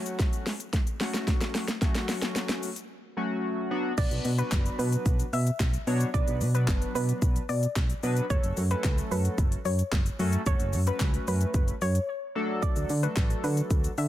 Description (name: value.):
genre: dance-pop.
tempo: 111 BPM.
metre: 4/4.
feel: straight.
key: B minor.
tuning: A4 = 440 Hz.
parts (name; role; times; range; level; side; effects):
chorused polysynth; accompaniment; 0.0-13.9 s; F#3 to C#5; -33 LUFS; left 1 dB; sidechain pumping.
pop drum kit; drums; 0.1-14.1 s; crash cymbal, handclaps, hi-hat, kick drum, shaker, snare drum; -28 LUFS; equal; none.
soft round pluck; melody; 4.0-14.1 s; B4 to E5; -34 LUFS; equal; chorus, sidechain pumping, digital delay.
solid FM bass; bass; 4.0-14.1 s; F#1 to D3; -27 LUFS; equal; sidechain pumping.
room: little or no reverb.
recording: dense, heavily limited modern master.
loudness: -25 LUFS.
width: side -13 dB against mid.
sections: 0.0-4.0 A section; 4.0-14.1 B section.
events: build-up 0.0-4.0; drum fill 0.0-2.9; drop 4.0-14.1; break 12.1-12.6.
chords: 0.0 F#m; 3.7 Bm; 8.3 F#m; 12.4 D.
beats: 0.20 0.74 1.28 | 1.82 2.36 2.90 3.44 | 3.98 4.52 5.06 5.60 | 6.14 6.68 7.22 7.76 | 8.30 8.84 9.38 9.93 | 10.47 11.01 11.55 12.09 | 12.63 13.17 13.71.